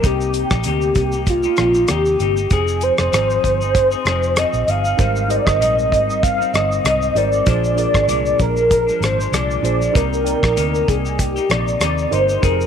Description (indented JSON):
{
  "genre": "indie pop, bedroom pop",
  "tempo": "97 BPM",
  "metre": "4/4",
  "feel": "swing 55% on 16ths",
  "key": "unclear",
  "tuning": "A4 = 440 Hz",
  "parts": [
    { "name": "warm velvety synth lead", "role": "melody", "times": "0.0-12.7 s", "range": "F4 to F5", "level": "-18 LUFS", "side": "equal", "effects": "ensemble chorus, slapback echo" },
    { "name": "clean electric guitar", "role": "accompaniment", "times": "0.0-12.7 s", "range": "Ab2 to Ab4", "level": "-25 LUFS", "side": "left 11 dB", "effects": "lush chorus, vibrato effect" },
    { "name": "vintage muted fingered electric bass", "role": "bass", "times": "0.0-12.7 s", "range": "F1 to Eb2", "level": "-22 LUFS", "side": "right 1 dB", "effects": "tube saturation" },
    { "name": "damped 70s drum kit", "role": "drums", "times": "0.0-12.7 s", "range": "hi-hat, kick drum, rim click, shaker", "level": "-21 LUFS", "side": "equal", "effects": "none" },
    { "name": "mellow reed electric piano", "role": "accompaniment", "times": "5.0-12.7 s", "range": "D4 to G5", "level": "-25 LUFS", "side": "right 13 dB", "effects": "fast tremolo, cassette tape" }
  ],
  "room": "light reverb",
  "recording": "1960s-style stereo with parts hard left and right",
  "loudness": "-15 LUFS",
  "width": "side -8 dB against mid",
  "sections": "0.0-12.7 A section",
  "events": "none",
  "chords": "0.0 Cm7; 2.5 Fm7; 5.0 Abmaj7; 7.5 Bb7; 9.9 Cm7",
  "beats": "| 0.04 0.66 1.28 1.90 | 2.52 3.13 3.75 4.37 | 4.99 5.61 6.23 6.85 | 7.47 8.09 8.71 9.32 | 9.94 10.56 11.18 11.80 | 12.42"
}